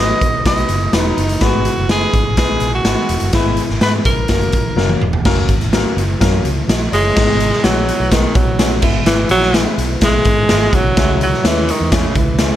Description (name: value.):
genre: uptempo 1960s-style soul.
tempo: 126 BPM.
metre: 4/4.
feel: straight.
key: B major.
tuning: A4 = 444 Hz.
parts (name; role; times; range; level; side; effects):
breathy tenor saxophone; melody; 0.0-12.6 s; C#3 to D#5; -18 LUFS; right 1 dB; none.
clear baby grand piano; accompaniment; 0.0-12.6 s; F#3 to D#5; -21 LUFS; left 4 dB; none.
vintage muted fingered electric bass; bass; 0.0-12.5 s; E1 to G#2; -19 LUFS; equal; none.
raw garage drum kit; drums; 0.2-12.5 s; crash cymbal, hi-hat, kick drum, snare drum, toms; -16 LUFS; equal; none.
room: light reverb.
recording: none.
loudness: -12 LUFS.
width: side -12 dB against mid.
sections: 0.0-5.2 A section; 5.2-7.2 B section; 7.2-12.6 C section.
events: drum fill 4.8-5.2.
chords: 0.0 B; 3.3 E/G#; 4.3 F#; 7.2 G#m; 8.8 E/G#; 11.0 C#m.